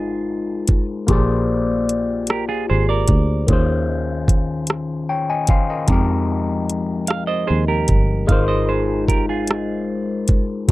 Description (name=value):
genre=slow six-eight R&B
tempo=50 BPM (dotted quarters)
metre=6/8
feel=straight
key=unclear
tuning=A4 = 439 Hz
part: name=semi-hollow electric guitar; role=second line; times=0.0-3.5, 7.1-10.5 s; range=F4 to F5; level=-24 LUFS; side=right 6 dB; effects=none
part: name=overdriven tine electric piano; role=accompaniment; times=0.0-10.7 s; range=Bb2 to Ab5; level=-21 LUFS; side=left 3 dB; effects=phaser
part: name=fingered electric bass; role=bass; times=0.0-10.7 s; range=G1 to F2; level=-21 LUFS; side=equal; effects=none
part: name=smooth R&B drum kit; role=drums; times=0.7-10.7 s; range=hi-hat, kick drum, rim click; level=-16 LUFS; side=equal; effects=none
room=little or no reverb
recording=dark, warm production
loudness=-17 LUFS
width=side -18 dB against mid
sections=0.0-10.7 A section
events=none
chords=0.0 Ab6; 1.1 Bb13; 3.5 Eb13sus4; 5.9 Fm11; 8.3 Ab6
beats=| 1.09 2.29 | 3.49 4.69 | 5.89 7.09 | 8.29 9.49 | 10.69